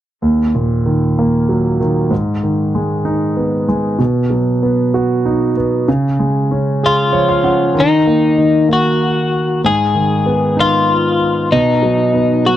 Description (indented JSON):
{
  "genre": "pop",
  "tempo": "64 BPM (dotted quarters)",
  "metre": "6/8",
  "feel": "straight",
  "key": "Eb minor",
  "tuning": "A4 = 438 Hz",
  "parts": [
    { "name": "clear concert grand piano", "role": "accompaniment", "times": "0.2-12.6 s", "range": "Eb2 to Gb5", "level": "-14 LUFS", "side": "right 1 dB", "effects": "none" },
    { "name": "twelve-string electric guitar", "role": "melody", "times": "6.9-12.6 s", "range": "Eb4 to Ab4", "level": "-14 LUFS", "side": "left 3 dB", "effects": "slapback echo" }
  ],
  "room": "moderate booth ambience, RT60 0.2 s",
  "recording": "dry, close 1970s-style studio recording",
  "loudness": "-12 LUFS",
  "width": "side -12 dB against mid",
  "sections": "0.2-7.8 A section; 7.8-12.6 B section",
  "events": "grand piano fill 6.8-7.8",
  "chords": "0.2 Ebm; 2.1 Abm; 4.0 B; 5.9 Db; 7.8 Ebm; 9.6 Abm; 11.5 B"
}